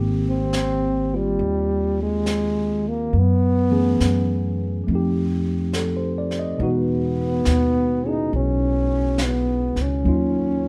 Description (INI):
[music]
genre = jazz ballad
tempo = 69 BPM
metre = 4/4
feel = swing 66% on 8ths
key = unclear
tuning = A4 = 440 Hz
[part]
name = tine electric piano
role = accompaniment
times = 0.0-10.7 s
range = B2 to Eb5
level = -27 LUFS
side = equal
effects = none
[part]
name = upright bass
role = bass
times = 0.0-10.7 s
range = Ab1 to Gb2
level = -26 LUFS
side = equal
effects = none
[part]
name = mellow trombone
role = melody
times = 0.3-10.7 s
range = G3 to D#4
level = -25 LUFS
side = equal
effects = none
[part]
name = jazz brush drum kit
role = drums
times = 0.5-10.7 s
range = brushed snare drum, hi-hat, snare drum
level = -35 LUFS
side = equal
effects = none
[sound]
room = light reverb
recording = none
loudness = -21 LUFS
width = mono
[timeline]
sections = 0.0-10.7 A section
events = none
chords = 0.0 Abmaj7; 3.1 Gbm11; 4.9 F9; 6.6 Emaj7; 10.1 Ebm7